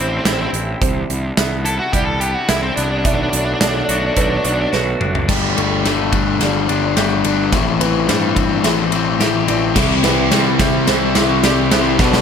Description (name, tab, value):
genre	post-rock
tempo	107 BPM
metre	4/4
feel	straight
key	unclear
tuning	A4 = 443 Hz
part	octave-fuzz lead guitar	melody	0.0-4.7 s	C4 to A4	-21 LUFS	left 1 dB	distortion, slapback echo
part	pedal harmonium	sustained chords	0.0-12.2 s	C3 to B5	-28 LUFS	right 4 dB	none
part	felt-muted upright piano	arpeggios	0.0-12.2 s	A4 to E5	-28 LUFS	right 9 dB	slapback echo
part	twangy electric guitar	arpeggios	0.0-12.2 s	A2 to G4	-25 LUFS	left 1 dB	spring reverb, slapback echo
part	fuzz picked electric bass	bass	0.0-12.2 s	F#1 to G2	-21 LUFS	right 1 dB	overdrive
part	big rock drum kit	drums	0.3-12.2 s	crash cymbal, hi-hat, kick drum, ride cymbal, snare drum, toms	-19 LUFS	right 1 dB	none
part	overdriven semi-hollow guitar	riff	5.3-12.2 s	A2 to G4	-17 LUFS	left 10 dB	none
part	cranked stack guitar	riff	9.7-12.2 s	B2 to E4	-20 LUFS	right 15 dB	overdrive, phaser
room	light reverb, small room ambience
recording	none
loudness	-14 LUFS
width	side -7 dB against mid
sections	0.0-5.3 A section; 5.3-12.2 B section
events	drum fill 4.7-5.3, 5.3-12.2; build-up 5.3-12.2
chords	0.0 Am7; 0.8 Cmaj7; 3.1 Bm7; 5.3 Gsus2; 7.5 Am7; 9.8 Cmaj7